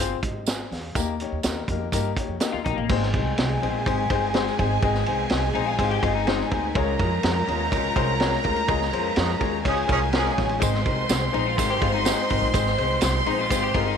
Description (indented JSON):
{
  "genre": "uptempo 1960s-style soul",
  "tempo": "124 BPM",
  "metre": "4/4",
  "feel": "straight",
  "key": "Ab major",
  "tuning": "A4 = 439 Hz",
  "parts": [
    { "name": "warm grand piano", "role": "accompaniment", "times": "0.0-13.9 s", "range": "Ab3 to Ab5", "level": "-27 LUFS", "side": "left 11 dB", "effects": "none" },
    { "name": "upright bass", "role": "bass", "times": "0.0-14.0 s", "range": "G1 to G2", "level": "-28 LUFS", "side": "right 2 dB", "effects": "none" },
    { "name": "vintage drum kit", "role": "drums", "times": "0.0-13.9 s", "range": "crash cymbal, hi-hat, kick drum, ride cymbal, snare drum", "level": "-27 LUFS", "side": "right 2 dB", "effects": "none" },
    { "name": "tambourine", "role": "percussion", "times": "0.5-2.5, 10.6-13.6 s", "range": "none", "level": "-34 LUFS", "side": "right 18 dB", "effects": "none" },
    { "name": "electric guitar at the edge of break-up", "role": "riff", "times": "2.5-6.7, 11.3-14.0 s", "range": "Bb3 to G4", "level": "-30 LUFS", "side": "left 11 dB", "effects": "analog chorus" },
    { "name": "warm chamber violin section", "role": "second line", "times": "2.9-14.0 s", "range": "Ab4 to C6", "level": "-26 LUFS", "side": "right 2 dB", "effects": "none" },
    { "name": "clear horn section", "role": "second line", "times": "9.2-10.5 s", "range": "F3 to Ab4", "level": "-28 LUFS", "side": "right 3 dB", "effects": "none" }
  ],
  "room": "light reverb, small room ambience",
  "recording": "1960s-style stereo with parts hard left and right",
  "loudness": "-21 LUFS",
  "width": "side -7 dB against mid",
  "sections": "0.0-2.9 A section; 2.9-14.0 B section",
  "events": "band accent 8.7-10.6",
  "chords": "0.0 Fm; 1.0 Eb; 2.9 Ab; 6.8 Db; 10.6 Ab"
}